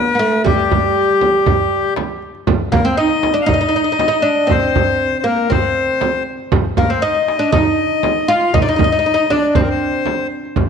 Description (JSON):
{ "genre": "Arabic maqam ensemble", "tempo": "119 BPM", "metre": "4/4", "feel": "straight", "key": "unclear", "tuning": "A4 = 440 Hz", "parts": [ { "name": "oud", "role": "melody", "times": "0.0-10.3 s", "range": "G3 to F4", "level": "-17 LUFS", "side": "right 2 dB", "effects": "slapback echo" }, { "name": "accordion", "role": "second line", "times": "0.0-10.3 s", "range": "G4 to F5", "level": "-18 LUFS", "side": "left 7 dB", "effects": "none" }, { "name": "darbuka", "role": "percussion", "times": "0.1-10.7 s", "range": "none", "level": "-23 LUFS", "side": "left 5 dB", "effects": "none" }, { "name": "frame drum", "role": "percussion", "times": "0.5-10.7 s", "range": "none", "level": "-19 LUFS", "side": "right 5 dB", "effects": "none" } ], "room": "wet echo chamber reverb, RT60 1.6 s, small room ambience", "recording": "1960s-style stereo", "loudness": "-13 LUFS", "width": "side -6 dB against mid", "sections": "0.0-2.5 A section; 2.5-10.7 B section", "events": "none", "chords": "none" }